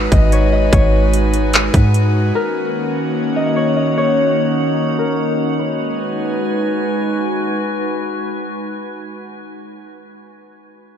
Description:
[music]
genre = hip hop, atmospheric cloud-rap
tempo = 148 BPM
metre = 4/4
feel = half-time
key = G# minor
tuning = A4 = 440 Hz
[part]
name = concert harp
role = melody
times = 0.0-7.6 s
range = A#4 to D#5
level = -21 LUFS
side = left 3 dB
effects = low-pass filter, ping-pong delay
[part]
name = airy breathy pad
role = sustained chords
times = 0.0-9.6 s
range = D#3 to B4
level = -20 LUFS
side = right 1 dB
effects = chorus, sidechain pumping, low-pass filter
[part]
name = soft 808-style bass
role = bass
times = 0.0-2.3 s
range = G#1 to G#2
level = -14 LUFS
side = equal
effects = none
[part]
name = drifting glass-harmonics texture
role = texture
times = 0.0-9.6 s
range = D#4 to G#5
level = -25 LUFS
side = left 2 dB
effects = chorus, built-in reverb
[part]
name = trap drum kit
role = drums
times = 0.1-2.0 s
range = handclaps, hi-hat, kick drum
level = -14 LUFS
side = equal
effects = overdrive
[sound]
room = light reverb, digital ambience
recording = none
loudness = -14 LUFS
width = side -8 dB against mid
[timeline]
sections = 0.0-5.6 A section; 5.6-8.8 B section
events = filter sweep 0.0-5.6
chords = 0.0 G#m7; 2.3 D#m7; 5.6 G#m7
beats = 0.32 | 0.73 1.13 1.54 1.94 | 2.35 2.75 3.16 3.56 | 3.97 4.37 4.78 5.18 | 5.59 6.00 6.40 6.81 | 7.21 7.62 8.02 8.43

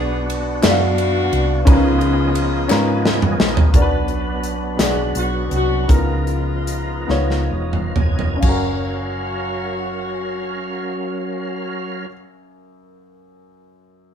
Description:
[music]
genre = slow gospel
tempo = 42-58 BPM (dotted quarters)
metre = 6/8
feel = straight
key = F# major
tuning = A4 = 440 Hz
[part]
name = warm saxophone section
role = melody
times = 0.0-12.1 s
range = G#3 to G#4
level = -25 LUFS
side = left 3 dB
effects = none
[part]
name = warm upright piano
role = accompaniment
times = 0.0-14.1 s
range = F#2 to E#5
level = -22 LUFS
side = left 2 dB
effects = none
[part]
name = overdriven tonewheel organ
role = sustained chords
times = 0.0-12.1 s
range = E#3 to G#5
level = -26 LUFS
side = right 3 dB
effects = fast rotary speaker, chorus vibrato
[part]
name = hollow-body short-scale fingered electric bass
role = bass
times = 0.0-12.1 s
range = E1 to G#2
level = -22 LUFS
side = equal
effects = none
[part]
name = modern studio drum kit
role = drums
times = 0.3-8.7 s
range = crash cymbal, hi-hat, kick drum, ride cymbal, snare drum, toms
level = -17 LUFS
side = equal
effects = none
[part]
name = group handclap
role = percussion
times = 0.6-3.0 s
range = none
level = -30 LUFS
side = left 2 dB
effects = none
[sound]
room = moderate stone room reverb, RT60 1.0 s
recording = band playing live in one room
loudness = -16 LUFS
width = side -8 dB against mid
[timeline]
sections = 0.0-3.7 A section; 3.7-8.4 B section; 8.4-14.1 C section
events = drum fill 2.7-3.7, 7.1-8.4; slowing down 3.7-8.4; tonewheel organ fill 7.1-8.4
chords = 0.0 Bm; 1.7 C#13; 3.7 Bm; 5.9 C#13; 8.4 F#maj7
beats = 0.64 | 1.67 2.70 | 3.73 4.79 | 5.89 7.08 | 8.43 9.87 | 11.31 12.75

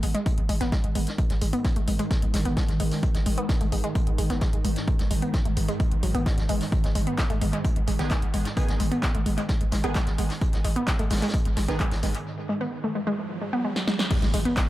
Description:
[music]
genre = driving peak-time techno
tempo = 130 BPM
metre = 4/4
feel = straight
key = G# phrygian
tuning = A4 = 439 Hz
[part]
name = wide unison pluck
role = riff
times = 0.0-14.5 s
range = F#3 to B3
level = -30 LUFS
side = equal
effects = tube saturation, sidechain pumping, tape echo
[part]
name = growling 808-style bass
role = bass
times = 0.0-14.5 s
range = G#1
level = -28 LUFS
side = equal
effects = sidechain pumping, low-pass filter
[part]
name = swarming drone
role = drone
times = 1.0-12.3 s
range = G#2 to D#3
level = -34 LUFS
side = right 1 dB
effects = built-in reverb, sidechain pumping
[part]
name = punchy analog drum machine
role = drums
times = 0.0-14.7 s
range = crash cymbal, handclaps, hi-hat, ride cymbal, snare drum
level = -33 LUFS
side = equal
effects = sidechain pumping on hats, sidechain pumping on cymbals, tape echo
[part]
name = vintage brush drum kit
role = drums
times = 0.0-14.7 s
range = hi-hat, snare drum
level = -39 LUFS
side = equal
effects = sidechain pumping on hats, high-pass filter on hats, high-pass filter on snare, high-pass filter on room, tape echo
[part]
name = electronic kick drum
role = drums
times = 0.3-14.7 s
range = none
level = -25 LUFS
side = equal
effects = none
[part]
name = rave stab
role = stabs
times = 8.0-11.9 s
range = D#3 to G#4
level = -35 LUFS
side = right 3 dB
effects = chorus, built-in reverb, sidechain pumping, tape echo
[part]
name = riser and impact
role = sound effects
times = 12.2-14.7 s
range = none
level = -35 LUFS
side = right 2 dB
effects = none
[sound]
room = light reverb, digital ambience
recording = echo-heavy mix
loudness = -23 LUFS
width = side -15 dB against mid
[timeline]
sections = 0.0-14.1 A section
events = riser 12.2-14.1; break 12.3-14.1; drum fill 13.8-14.1; band accent 14.0; impact 14.1-14.7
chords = 0.0 G#m; 14.1 N.C.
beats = 0.26 0.72 | 1.18 1.65 2.11 2.57 | 3.03 3.49 3.95 4.41 | 4.88 5.34 5.80 6.26 | 6.72 7.18 7.64 8.11 | 8.57 9.03 9.49 9.95 | 10.41 10.88 11.34 11.80 | 12.26 12.72 13.18 13.64 | 14.11 14.57

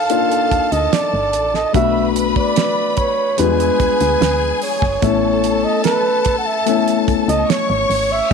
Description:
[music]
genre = lush 1970s-style soul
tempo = 73 BPM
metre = 4/4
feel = straight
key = unclear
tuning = A4 = 440 Hz
[part]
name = breathy flugelhorn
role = melody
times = 0.0-8.3 s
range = B4 to F#5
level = -18 LUFS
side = right 4 dB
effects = none
[part]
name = warm symphonic string section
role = second line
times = 0.0-8.3 s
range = G#4 to C#6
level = -22 LUFS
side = left 3 dB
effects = none
[part]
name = dark concert grand piano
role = accompaniment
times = 0.0-8.3 s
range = G3 to G4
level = -20 LUFS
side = left 13 dB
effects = none
[part]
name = damped 70s drum kit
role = drums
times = 0.1-8.3 s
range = hi-hat, kick drum, snare drum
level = -21 LUFS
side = right 5 dB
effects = none
[part]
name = woody FM bass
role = bass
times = 0.5-8.3 s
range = F#1 to E2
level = -23 LUFS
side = equal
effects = none
[sound]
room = light reverb, small room ambience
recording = 1960s-style stereo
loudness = -14 LUFS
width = side -5 dB against mid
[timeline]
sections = 0.0-8.3 A section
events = none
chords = 0.0 Cm9 (rootless); 1.7 Bm7; 3.4 E7b9; 5.0 Amaj9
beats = 0.11 0.93 | 1.75 2.57 3.39 4.21 | 5.03 5.85 6.67 7.49 | 8.31

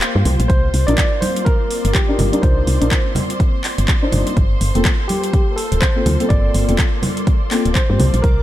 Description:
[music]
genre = deep house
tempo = 124 BPM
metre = 4/4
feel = swing 59% on 16ths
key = unclear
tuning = A4 = 441 Hz
[part]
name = soft string machine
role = sustained chords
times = 0.0-8.4 s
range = Bb3 to D5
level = -27 LUFS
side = left 1 dB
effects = ensemble chorus, vintage 12-bit sampler grit, sidechain pumping
[part]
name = deep house drum kit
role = drums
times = 0.0-8.4 s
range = handclaps, hi-hat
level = -24 LUFS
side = equal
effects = overdrive
[part]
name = bright studio violin section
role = texture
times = 0.0-8.4 s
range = C5 to D6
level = -32 LUFS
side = right 2 dB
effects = sidechain pumping
[part]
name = woody FM bass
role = bass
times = 0.2-8.4 s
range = D1 to G2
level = -17 LUFS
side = equal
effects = sidechain pumping
[part]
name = congas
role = percussion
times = 0.3-8.1 s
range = none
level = -24 LUFS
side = equal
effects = none
[part]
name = overdriven tine electric piano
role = melody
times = 0.5-8.4 s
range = G4 to D5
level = -24 LUFS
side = right 1 dB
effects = medium tremolo, vintage 12-bit sampler grit, ping-pong delay
[part]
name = electronic kick drum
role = drums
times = 0.5-8.4 s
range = none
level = -16 LUFS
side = equal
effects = overdrive
[part]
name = felt-muted upright piano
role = stabs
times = 0.9-8.0 s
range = Bb3 to C5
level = -22 LUFS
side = left 2 dB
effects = sidechain pumping, dub echo
[sound]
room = small room ambience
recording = none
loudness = -14 LUFS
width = side -14 dB against mid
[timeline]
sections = 0.0-8.4 A section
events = break 0.0-0.5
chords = 0.5 Cm11; 4.4 Gm11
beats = 0.01 | 0.50 0.98 1.46 1.95 | 2.43 2.92 3.40 3.88 | 4.37 4.85 5.33 5.82 | 6.30 6.79 7.27 7.75 | 8.24

